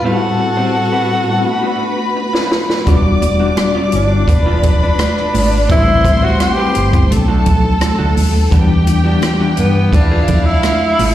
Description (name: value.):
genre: lush 1970s-style soul.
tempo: 85 BPM.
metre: 4/4.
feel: straight.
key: E minor.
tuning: A4 = 440 Hz.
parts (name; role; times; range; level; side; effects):
breathy tenor saxophone; melody; 0.0-11.1 s; B3 to G4; -17 LUFS; left 1 dB; slapback echo.
warm symphonic violin section; second line; 0.0-11.1 s; E4 to D6; -20 LUFS; left 1 dB; slapback echo.
mellow tine electric piano; accompaniment; 0.0-11.1 s; A2 to F#4; -18 LUFS; left 2 dB; medium stereo tremolo, slapback echo.
electric guitar through a small old amp; riff; 0.0-11.1 s; G3 to C5; -26 LUFS; right 5 dB; slapback echo.
compact cocktail drum kit; drums; 2.3-11.1 s; hi-hat, kick drum, rim click, snare drum; -16 LUFS; equal; none.
vintage muted fingered electric bass; bass; 2.9-11.1 s; E1 to G2; -15 LUFS; equal; none.
congas; percussion; 2.9-11.1 s; none; -21 LUFS; right 4 dB; none.
room: small room ambience.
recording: live gig heard through the venue's PA, recital hall reverb.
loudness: -11 LUFS.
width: side -12 dB against mid.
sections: 0.0-11.1 A section.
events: drum fill 2.2-2.9.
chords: 0.0 Am9; 1.5 Bm7; 2.9 Em9; 4.3 E7b9; 5.7 Am9; 7.1 Bm7; 8.5 Em9; 9.9 E7b9.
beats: | 0.04 0.75 1.46 2.17 | 2.87 3.58 4.28 4.99 | 5.70 6.40 7.11 7.82 | 8.52 9.23 9.93 10.64.